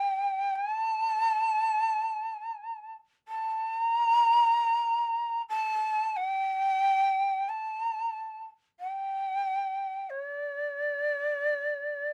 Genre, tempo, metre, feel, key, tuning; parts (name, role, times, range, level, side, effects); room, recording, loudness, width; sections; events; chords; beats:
japanese traditional, Japanese chamber music; free time; A4 = 439 Hz
breathy shakuhachi; solo; 0.0-12.1 s; D5 to Bb5; -29 LUFS; equal
little or no reverb; close, detailed microphones; -29 LUFS; mono
0.0-12.1 A section
free time